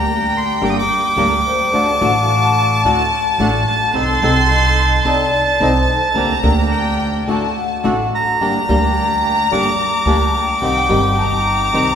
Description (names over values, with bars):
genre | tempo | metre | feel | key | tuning
tango | 108 BPM | 4/4 | rubato | G harmonic minor | A4 = 435 Hz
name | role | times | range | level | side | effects
bandoneon | melody | 0.0-11.9 s | A5 to Eb6 | -18 LUFS | equal | none
clear studio violin section | second line | 0.0-11.9 s | G5 to C6 | -21 LUFS | left 2 dB | none
bandoneon | stabs | 0.0-11.9 s | A3 to A4 | -25 LUFS | right 3 dB | none
upright bass | bass | 0.0-11.9 s | G1 to D2 | -20 LUFS | right 1 dB | none
flamenco guitar | accompaniment | 0.6-11.9 s | C3 to A4 | -21 LUFS | left 2 dB | none
vibraphone with soft mallets | second line | 1.5-11.9 s | C5 to A5 | -24 LUFS | left 4 dB | none
room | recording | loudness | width
wet church reverb, RT60 2.9 s | recorded in a church or concert hall | -13 LUFS | side -8 dB against mid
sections
0.0-11.9 A section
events
none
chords
0.0 Gm; 1.7 D; 3.9 Adim/C; 6.2 Gm/D; 7.3 D; 8.4 Gm; 10.6 Cm